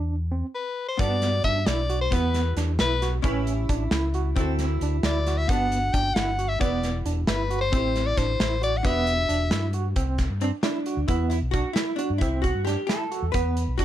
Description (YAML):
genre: progressive instrumental, band music in an uneven meter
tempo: 267 BPM (eighths)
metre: 5/8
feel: straight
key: E minor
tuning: A4 = 440 Hz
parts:
  - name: overdriven tine electric piano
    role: arpeggios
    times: 0.0-13.8 s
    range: B3 to F#4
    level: -31 LUFS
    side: right 4 dB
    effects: fast tremolo
  - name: fingered electric bass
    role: bass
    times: 0.0-13.8 s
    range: E1 to G2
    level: -26 LUFS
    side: equal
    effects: none
  - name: bright soprano saxophone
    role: melody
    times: 0.5-9.7 s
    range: B4 to G5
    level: -26 LUFS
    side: left 3 dB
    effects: none
  - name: archtop guitar, miked and amplified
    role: accompaniment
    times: 1.0-13.8 s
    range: B3 to C5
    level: -30 LUFS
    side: right 1 dB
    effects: double-tracked left and right
  - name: loose indie drum kit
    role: drums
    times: 1.0-13.8 s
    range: hi-hat, kick drum, snare drum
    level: -28 LUFS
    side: equal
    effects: none
room: light reverb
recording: none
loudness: -22 LUFS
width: side -12 dB against mid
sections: 1.0-10.0 A section; 10.0-13.8 B section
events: stop 0.4-1.0; hollow-body jazz guitar solo 10.0-13.8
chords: 0.0 Cmaj9/E; 1.0 Gmaj7; 2.1 Em; 3.2 A7; 4.4 D7; 5.5 Gmaj7; 6.6 Em; 7.7 Am7; 8.8 Em7; 10.0 Cadd9; 11.1 E7(no3); 12.2 Cadd9; 13.3 Em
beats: 0.09 0.31 0.54 0.77 | 0.99 1.22 1.44 1.67 1.89 | 2.12 2.34 2.57 2.79 3.02 | 3.24 3.46 3.69 3.91 4.14 | 4.36 4.59 4.81 5.03 5.26 | 5.48 5.71 5.93 6.16 6.38 | 6.60 6.83 7.05 7.28 7.50 | 7.72 7.95 8.17 8.40 8.62 | 8.85 9.07 9.29 9.52 9.74 | 9.97 10.19 10.42 10.64 10.87 | 11.09 11.31 11.54 11.76 11.99 | 12.21 12.44 12.66 12.89 13.11 | 13.34 13.56 13.79